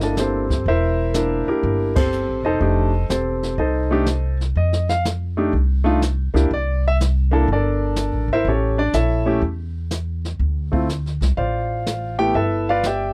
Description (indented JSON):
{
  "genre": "jazz piano trio",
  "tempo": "123 BPM",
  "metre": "4/4",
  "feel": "swing 68% on 8ths",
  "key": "C mixolydian",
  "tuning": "A4 = 440 Hz",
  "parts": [
    { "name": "clear concert grand piano", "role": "melody", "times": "0.0-13.1 s", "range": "A3 to G5", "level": "-23 LUFS", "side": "equal", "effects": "none" },
    { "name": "upright bass", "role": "bass", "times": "0.0-13.1 s", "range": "E1 to G2", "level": "-24 LUFS", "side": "equal", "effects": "none" },
    { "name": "jazz brush drum kit", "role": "drums", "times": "0.0-13.1 s", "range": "brushed snare drum, hi-hat, kick drum, ride cymbal, snare drum", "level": "-27 LUFS", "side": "equal", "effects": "none" }
  ],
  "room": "little or no reverb",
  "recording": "dry, close 1970s-style studio recording",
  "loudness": "-20 LUFS",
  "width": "mono",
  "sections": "0.0-13.1 A section",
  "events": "band accent 1.9",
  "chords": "0.0 C13; 2.6 F13; 6.5 C13; 8.4 A7; 10.4 Dm7; 12.3 G13",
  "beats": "0.17 | 0.65 1.14 1.63 2.11 | 2.60 3.09 3.57 4.06 | 4.55 5.04 5.52 6.01 | 6.50 6.98 7.47 7.96 | 8.44 8.93 9.42 9.90 | 10.39 10.88 11.37 11.85 | 12.34 12.83"
}